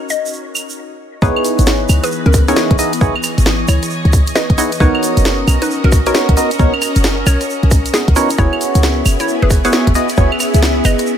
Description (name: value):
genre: UK garage, two-step garage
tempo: 134 BPM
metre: 4/4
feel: swing 64% on 16ths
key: C# dorian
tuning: A4 = 440 Hz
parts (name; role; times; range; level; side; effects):
- soft string machine; sustained chords; 0.0-11.2 s; E3 to D#5; -24 LUFS; equal; ensemble chorus, sidechain pumping
- warbly tape-like pad; texture; 0.0-11.2 s; E3 to E5; -23 LUFS; left 2 dB; chorus, built-in reverb, sidechain pumping
- hollow square pluck; melody; 0.1-11.0 s; B3 to D#5; -21 LUFS; left 1 dB; chorus, dub echo
- tube shaker; percussion; 0.1-11.2 s; none; -25 LUFS; right 5 dB; none
- garage drum kit; drums; 0.6-11.1 s; claves, hi-hat, rim click, snare drum; -19 LUFS; right 1 dB; low-pass filter on perc, studio ambience, low-pass filter on hats, low-pass filter on snare
- percussive organ stab; stabs; 1.2-10.3 s; B3 to D#5; -18 LUFS; right 1 dB; chorus, phaser, dub echo
- short 808-style bass; bass; 1.2-11.0 s; F#1 to C#2; -14 LUFS; equal; none
- electronic kick drum; drums; 1.2-10.3 s; none; -14 LUFS; equal; studio ambience
room: little or no reverb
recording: none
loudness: -11 LUFS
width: side -9 dB against mid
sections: 0.0-1.2 A section; 1.2-11.2 B section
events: stop 0.8-1.2; drop 1.2-11.2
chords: 0.0 D#m7; 1.2 C#m9; 4.8 Bmaj9; 8.4 F#9sus4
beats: 0.33 0.77 | 1.22 1.67 2.12 2.56 | 3.01 3.46 3.91 4.36 | 4.80 5.25 5.70 6.15 | 6.59 7.04 7.49 7.94 | 8.38 8.83 9.28 9.73 | 10.18 10.62 11.07